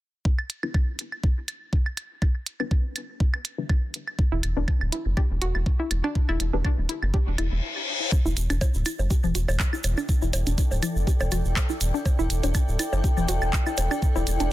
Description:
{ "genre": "minimal techno", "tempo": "122 BPM", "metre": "4/4", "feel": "swing 54% on 16ths", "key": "E minor", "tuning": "A4 = 440 Hz", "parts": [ { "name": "electronic kick drum", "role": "drums", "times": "0.3-14.1 s", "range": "none", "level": "-22 LUFS", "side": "equal", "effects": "none" }, { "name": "claves, woodblock, bongos and congas", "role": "percussion", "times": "0.4-14.2 s", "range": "none", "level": "-33 LUFS", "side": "equal", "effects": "dub echo" }, { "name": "minimal click drum kit", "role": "drums", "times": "0.5-14.5 s", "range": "handclaps, hi-hat", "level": "-30 LUFS", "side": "right 1 dB", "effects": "none" }, { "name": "filtered dub chord stab", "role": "stabs", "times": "0.6-6.6 s", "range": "D4 to B4", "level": "-35 LUFS", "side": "left 5 dB", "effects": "phaser, cassette tape, dub echo" }, { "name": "hollow square pluck", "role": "riff", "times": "4.3-14.5 s", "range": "D4 to G4", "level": "-32 LUFS", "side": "equal", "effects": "chorus, sidechain pumping, ping-pong delay" }, { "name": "rubbery square bass", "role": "bass", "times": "4.3-14.5 s", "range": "D1 to F#1", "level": "-25 LUFS", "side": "equal", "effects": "sidechain pumping" }, { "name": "reverse cymbal", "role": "sound effects", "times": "7.5-8.1 s", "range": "none", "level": "-29 LUFS", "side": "left 5 dB", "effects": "none" }, { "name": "egg shaker", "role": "percussion", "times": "8.1-14.5 s", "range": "none", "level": "-37 LUFS", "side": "right 3 dB", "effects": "none" }, { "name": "granular cloud pad", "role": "texture", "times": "9.8-14.5 s", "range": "E4 to G5", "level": "-32 LUFS", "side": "left 1 dB", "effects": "built-in reverb, sidechain pumping" } ], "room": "digital ambience", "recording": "dense, heavily limited modern master", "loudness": "-23 LUFS", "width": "side -15 dB against mid", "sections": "0.3-8.1 A section; 8.1-14.5 B section", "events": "reverse cymbal 7.5-8.1; stop 7.6-8.1; filter sweep on synth arpeggio sound 8.1-14.5", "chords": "0.3 Em7", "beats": "| 0.25 0.74 1.24 1.73 | 2.22 2.71 3.20 3.69 | 4.19 4.68 5.17 5.66 | 6.15 6.65 7.14 7.63 | 8.12 8.61 9.11 9.60 | 10.09 10.58 11.07 11.56 | 12.05 12.55 13.04 13.53 | 14.02 14.51" }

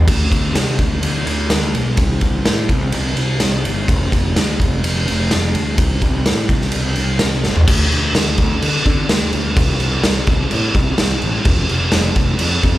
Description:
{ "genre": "quiet-loud alternative rock", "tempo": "127 BPM", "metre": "4/4", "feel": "straight", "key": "unclear", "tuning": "A4 = 440 Hz", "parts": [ { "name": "fuzz picked electric bass", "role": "bass", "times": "0.0-12.8 s", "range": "F1 to D3", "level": "-19 LUFS", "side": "equal", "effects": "overdrive" }, { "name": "raw garage drum kit", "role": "drums", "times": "0.1-12.7 s", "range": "crash cymbal, kick drum, ride cymbal, snare drum, toms", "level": "-15 LUFS", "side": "equal", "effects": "none" } ], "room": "little or no reverb", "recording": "live gig heard through the venue's PA, club reverb", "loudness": "-14 LUFS", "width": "side -15 dB against mid", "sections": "0.0-7.7 A section; 7.7-12.8 B section", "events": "drum fill 7.4", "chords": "none", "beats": "| 0.07 0.55 1.03 1.50 | 1.98 2.46 2.93 3.41 | 3.88 4.36 4.83 5.30 | 5.78 6.25 6.73 7.20 | 7.67 8.15 8.62 9.09 | 9.56 10.04 10.51 10.98 | 11.45 11.93 12.40" }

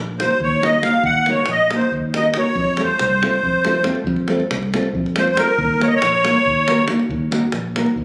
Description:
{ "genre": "balkan folk, Balkan wedding band", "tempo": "277 BPM (eighths)", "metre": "7/8", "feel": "straight", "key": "Eb dorian sharp4", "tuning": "A4 = 440 Hz", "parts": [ { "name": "fingered electric bass", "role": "bass", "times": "0.0-8.0 s", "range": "Bb1 to F2", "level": "-26 LUFS", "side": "equal", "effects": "none" }, { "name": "musette accordion", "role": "second line", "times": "0.2-6.8 s", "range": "Bb4 to Gb5", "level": "-19 LUFS", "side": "equal", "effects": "none" }, { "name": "nylon-string guitar", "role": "accompaniment", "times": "0.2-7.9 s", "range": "A3 to Bb4", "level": "-24 LUFS", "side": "equal", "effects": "none" }, { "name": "davul", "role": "percussion", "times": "0.2-8.0 s", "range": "none", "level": "-29 LUFS", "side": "equal", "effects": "none" } ], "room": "moderate recital hall reverb, RT60 1.8 s", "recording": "recorded on a phone in the room, club reverb, compression", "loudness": "-18 LUFS", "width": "mono", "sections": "0.0-8.0 A section", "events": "accordion solo 0.0-8.0", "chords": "0.0 Ebm; 2.6 F; 5.6 Ebm", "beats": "0.16 0.38 0.60 0.82 | 1.03 1.25 1.47 1.69 1.91 2.12 2.34 | 2.56 2.77 2.99 3.21 3.42 3.64 3.86 | 4.07 4.29 4.51 4.72 4.94 5.15 5.37 | 5.58 5.80 6.01 6.23 6.45 6.66 6.88 | 7.09 7.30 7.52 7.73 7.95" }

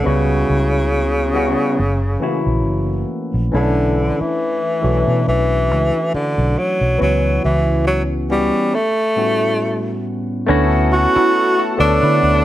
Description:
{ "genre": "R&B, neo-soul", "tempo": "69 BPM", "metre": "4/4", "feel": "swing 53% on 16ths", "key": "D major", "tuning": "A4 = 441 Hz", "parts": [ { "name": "breathy tenor saxophone", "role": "melody", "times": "0.0-12.4 s", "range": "C#3 to F#4", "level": "-17 LUFS", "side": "equal", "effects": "slapback echo" }, { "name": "barky tine electric piano", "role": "accompaniment", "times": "0.0-12.4 s", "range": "A2 to C#5", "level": "-20 LUFS", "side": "left 2 dB", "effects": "overdrive, phaser" }, { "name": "vintage muted fingered electric bass", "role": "bass", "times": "0.0-12.4 s", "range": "F#1 to D3", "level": "-18 LUFS", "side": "equal", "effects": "none" }, { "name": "electric guitar through a small old amp", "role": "second line", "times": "10.5-12.2 s", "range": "D4 to F#4", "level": "-23 LUFS", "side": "right 9 dB", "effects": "analog chorus" }, { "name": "hollow soft pad", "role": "sustained chords", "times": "10.5-12.4 s", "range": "A4 to A5", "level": "-26 LUFS", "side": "equal", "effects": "chorus" } ], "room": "light reverb", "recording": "none", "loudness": "-15 LUFS", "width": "side -13 dB against mid", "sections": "0.0-10.5 A section; 10.5-12.4 B section", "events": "break 8.7-10.5", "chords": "0.0 C#m7b5; 1.8 F#7; 3.5 Bm11; 7.0 C#m7b5; 8.7 A9; 10.5 Dmaj7", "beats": "| 0.04 0.91 1.78 2.65 | 3.52 4.39 5.26 6.12 | 7.00 7.86 8.73 9.60 | 10.47 11.34 12.21" }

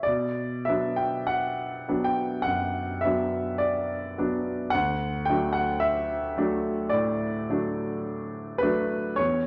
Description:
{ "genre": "classical, romantic nocturne for solo piano", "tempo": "48-56 BPM", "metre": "4/4", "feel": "rubato", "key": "B minor", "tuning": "A4 = 440 Hz", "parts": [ { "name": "warm concert grand piano", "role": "solo", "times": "0.0-9.5 s", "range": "D2 to G5", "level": "-27 LUFS", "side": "equal", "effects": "none" } ], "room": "wet recital hall reverb, RT60 1.5 s", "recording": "none", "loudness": "-27 LUFS", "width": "mono", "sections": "0.1-9.5 A section", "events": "none", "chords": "0.1 Bm; 4.7 D", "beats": "| 0.07 1.29 2.46 3.62 | 4.75 5.83 6.94 8.06 | 9.20" }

